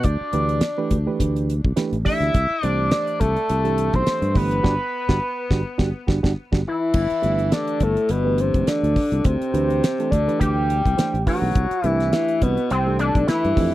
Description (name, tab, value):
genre	electric jazz fusion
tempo	104 BPM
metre	4/4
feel	swing 55% on 16ths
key	G major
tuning	A4 = 440 Hz
part	sync lead	melody	0.0-13.7 s	A3 to E5	-22 LUFS	equal	chorus
part	bright tenor saxophone	second line	0.0-13.7 s	A2 to E4	-30 LUFS	left 6 dB	tape echo
part	sustaining fretless electric bass	bass	0.0-13.7 s	F#1 to G2	-22 LUFS	equal	none
part	damped 70s drum kit	drums	0.0-13.7 s	crash cymbal, hi-hat, kick drum, snare drum	-21 LUFS	equal	none
part	reed electric piano	accompaniment	0.3-13.7 s	E3 to D5	-27 LUFS	right 5 dB	none
room	little or no reverb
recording	dry, close 1970s-style studio recording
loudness	-18 LUFS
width	side -15 dB against mid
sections	0.0-6.9 A section; 6.9-13.7 A section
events	band accent 4.6-6.9; drum fill 6.7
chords	0.1 Dsus4; 2.3 C69; 4.4 Gmaj13; 6.9 G; 9.2 D7sus4; 11.6 Cmaj13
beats	| 0.05 0.62 1.20 1.77 | 2.34 2.92 3.49 4.07 | 4.64 5.22 5.79 6.37 | 6.94 7.52 8.10 8.67 | 9.25 9.82 10.40 10.97 | 11.55 12.13 12.70 13.28